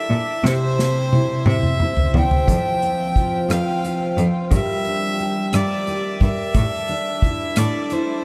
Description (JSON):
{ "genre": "six-eight pop ballad", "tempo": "59 BPM (dotted quarters)", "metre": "6/8", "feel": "straight", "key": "F major", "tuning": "A4 = 439 Hz", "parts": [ { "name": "clear violin", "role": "melody", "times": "0.0-8.2 s", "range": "C5 to G5", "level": "-26 LUFS", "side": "equal", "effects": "analog delay" }, { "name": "fingerpicked steel-string acoustic guitar", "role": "accompaniment", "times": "0.0-8.2 s", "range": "C3 to C5", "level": "-25 LUFS", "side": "equal", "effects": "double-tracked" }, { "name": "clear cello", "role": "bass", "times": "0.1-7.6 s", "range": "E2 to C3", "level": "-24 LUFS", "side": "equal", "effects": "none" }, { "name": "unplugged drum kit", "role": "drums", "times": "0.5-8.1 s", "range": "hi-hat, kick drum, rim click, snare drum, toms", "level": "-23 LUFS", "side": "equal", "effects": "none" } ], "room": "wet huge ambient reverb, RT60 7.6 s", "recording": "dreamy mix soaked in reverb", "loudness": "-20 LUFS", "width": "mono", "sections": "0.0-8.2 A section", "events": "drum fill 0.4-2.5", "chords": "0.4 C; 2.5 F5; 4.5 Gm; 6.5 Asus4" }